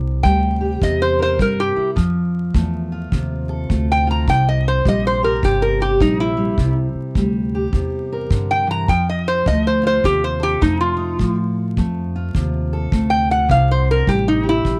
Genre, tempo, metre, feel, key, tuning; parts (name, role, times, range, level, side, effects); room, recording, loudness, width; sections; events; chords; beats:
acoustic country blues, solo or duo; 104 BPM; 4/4; swing 63% on 8ths; A4 = 440 Hz
fingerpicked steel-string acoustic guitar; accompaniment; 0.0-14.8 s; C3 to Bb4; -25 LUFS; equal
upright bass; bass; 0.0-14.8 s; G1 to A2; -23 LUFS; equal
metal-body resonator slide guitar; melody; 0.2-14.8 s; Eb4 to Bb5; -21 LUFS; equal
kick drum; drums; 0.2-14.8 s; -24 LUFS; equal
light reverb; vinyl crackle; -18 LUFS; mono
0.0-14.8 A section
resonator guitar played with a steel bar solo 0.0-14.8
0.0 C7; 2.0 F7; 4.3 C7; 8.9 F7; 13.5 C
0.24 0.81 1.39 | 1.97 2.54 3.12 3.70 | 4.27 4.85 5.42 6.00 | 6.58 7.15 7.73 8.30 | 8.88 9.46 10.03 10.61 | 11.19 11.76 12.34 12.92 | 13.49 14.07 14.65